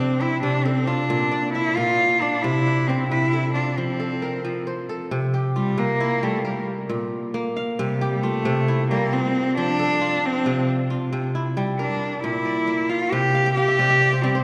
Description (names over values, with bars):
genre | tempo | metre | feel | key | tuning
west african traditional, West African string and xylophone music | 90 BPM (dotted quarters) | 12/8 | straight | C mixolydian | A4 = 440 Hz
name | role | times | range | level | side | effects
rich cello | melody | 0.0-14.4 s | G3 to G4 | -24 LUFS | equal | none
kora | arpeggios | 0.0-14.4 s | Bb2 to G5 | -26 LUFS | equal | none
room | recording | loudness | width
wet church reverb, RT60 3.6 s | recorded in a church or concert hall | -22 LUFS | mono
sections
0.0-5.1 A section; 5.1-14.4 B section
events
cello solo 5.1-14.4; kora fill 13.3-14.4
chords
0.0 Csus2; 1.1 Bb; 2.4 C; 3.8 F; 5.1 C; 6.5 Bb5; 7.8 C; 9.1 F; 10.5 C; 11.8 Bb; 13.1 C5